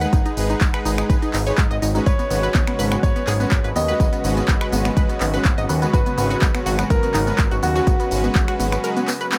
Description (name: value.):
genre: progressive house.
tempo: 124 BPM.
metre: 4/4.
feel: straight.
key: G# minor.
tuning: A4 = 440 Hz.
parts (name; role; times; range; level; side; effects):
clear grand piano; melody; 0.0-9.4 s; F#4 to F#5; -29 LUFS; equal; sidechain pumping, tape echo.
tight sequenced synth; arpeggios; 0.0-9.4 s; B3 to D#5; -29 LUFS; equal; chorus, sidechain pumping, digital delay.
soft supersaw; stabs; 0.0-9.4 s; G#3 to B4; -28 LUFS; equal; sidechain pumping, digital delay.
fat analog bass; bass; 0.0-8.8 s; G#1 to G#2; -26 LUFS; equal; sidechain pumping.
deep house drum kit; drums; 0.0-9.4 s; finger snaps, handclaps, hi-hat, tambourine; -30 LUFS; equal; sidechain pumping on hats, sidechain pumping on cymbals, sidechain pumping on perc.
electronic kick drum; drums; 0.1-8.5 s; none; -21 LUFS; equal; none.
lush unison pad; sustained chords; 2.1-9.4 s; C#3 to F#4; -32 LUFS; equal; chorus, phaser, vintage 12-bit sampler grit, sidechain pumping.
room: little or no reverb.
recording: none.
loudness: -19 LUFS.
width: mono.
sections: 0.0-9.4 A section.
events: none.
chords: 0.0 G#m.